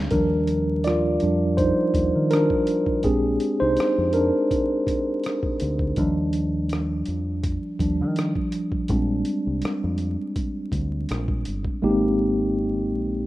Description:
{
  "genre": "R&B, neo-soul",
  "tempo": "82 BPM",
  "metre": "4/4",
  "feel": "swing 53% on 16ths",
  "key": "Eb major",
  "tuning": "A4 = 440 Hz",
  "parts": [
    { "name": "mellow tine electric piano", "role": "accompaniment", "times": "0.0-13.3 s", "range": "F3 to D5", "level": "-22 LUFS", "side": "equal", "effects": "medium stereo tremolo" },
    { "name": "deep dub fingered electric bass", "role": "bass", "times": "0.0-13.3 s", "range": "G1 to Eb3", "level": "-27 LUFS", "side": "equal", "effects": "none" },
    { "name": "boom bap sampler-style drum kit", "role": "drums", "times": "0.1-11.8 s", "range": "hi-hat, kick drum, rim click", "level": "-29 LUFS", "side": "equal", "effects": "none" }
  ],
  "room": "light reverb",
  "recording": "rough home demo mix, vinyl crackle",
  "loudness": "-21 LUFS",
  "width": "side -16 dB against mid",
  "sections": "0.0-11.8 A section; 11.8-13.3 B section",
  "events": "tine electric piano solo 0.0-11.8",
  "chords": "0.1 Ebmaj9; 3.0 Bb13; 6.0 Ebmaj9; 8.9 Bb13; 11.8 Abmaj7",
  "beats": "| 0.11 0.85 1.58 2.31 | 3.04 3.77 4.50 5.24 | 5.97 6.70 7.43 8.16 | 8.89 9.63 10.36 11.09 | 11.82 12.55"
}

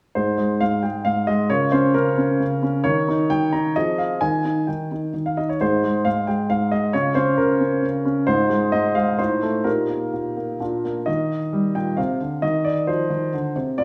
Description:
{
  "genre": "classical-period piano sonatina",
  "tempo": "133 BPM",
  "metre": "3/4",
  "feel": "rubato",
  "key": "Ab major, Eb major from 8.3 s",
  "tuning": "A4 = 443 Hz",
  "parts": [
    { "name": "clear grand piano", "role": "solo", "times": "0.2-13.8 s", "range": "Ab2 to Bb5", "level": "-21 LUFS", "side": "equal", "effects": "none" }
  ],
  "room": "moderate recital hall reverb, RT60 1.4 s",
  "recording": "small room ambience",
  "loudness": "-21 LUFS",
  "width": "mono",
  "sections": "0.2-11.1 A section; 11.1-13.8 B section",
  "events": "none",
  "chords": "0.2 Ab; 1.5 Bbm/Db; 2.9 Eb5; 3.8 Fm; 4.2 Eb; 5.6 Ab; 6.9 Bbm/Db; 8.3 Fm7/Ab; 9.2 F7/A; 9.7 Eb/Bb; 10.6 Bb; 11.1 Eb; 12.4 Cmadd9",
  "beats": "| 0.16 0.61 1.06 | 1.51 1.96 2.41 | 2.85 3.30 3.75 | 4.21 4.67 5.14 | 5.60 6.06 6.51 | 6.95 7.39 7.84 | 8.28 8.73 9.19 | 9.66 10.14 10.61 | 11.08 11.54 11.98 | 12.43 12.89 13.34 | 13.78"
}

